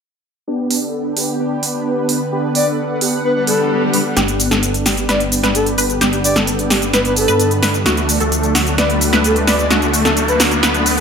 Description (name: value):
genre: EDM, festival progressive house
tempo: 130 BPM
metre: 4/4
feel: straight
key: G major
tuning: A4 = 441 Hz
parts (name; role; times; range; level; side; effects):
- lush unison pad; sustained chords; 1.0-11.0 s; D3 to F#5; -24 LUFS; equal; chorus
- supersaw chords; riff; 0.5-10.9 s; A3 to B4; -19 LUFS; equal; analog chorus, low-pass filter, digital delay
- big-room dance drum kit; drums; 0.7-11.0 s; hi-hat, shaker, snare drum; -17 LUFS; equal; overdrive
- breathy flute-like synth lead; melody; 2.6-11.0 s; A4 to D5; -20 LUFS; left 1 dB; chorus, digital delay
- swell and riser; sound effects; 3.4-11.0 s; none; -24 LUFS; left 1 dB; none
- wide unison pluck; arpeggios; 4.2-10.9 s; F#4 to B4; -22 LUFS; right 1 dB; phaser, digital delay
- wide detuned saw bass; bass; 4.2-11.0 s; G1 to G2; -22 LUFS; equal; chorus
room: light reverb, digital ambience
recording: none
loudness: -13 LUFS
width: side -6 dB against mid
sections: 0.5-4.2 A section; 4.2-11.0 B section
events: swell 3.4-4.2; build-up 4.2-11.0; drum fill 4.2-11.0; riser 4.2-11.0; filter sweep on supersaw synth 4.2-11.0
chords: 0.5 G; 7.9 D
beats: | 0.47 0.94 1.40 1.86 | 2.32 2.78 3.24 3.71 | 4.17 4.63 5.09 5.55 | 6.01 6.47 6.94 7.40 | 7.86 8.32 8.78 9.24 | 9.71 10.17 10.63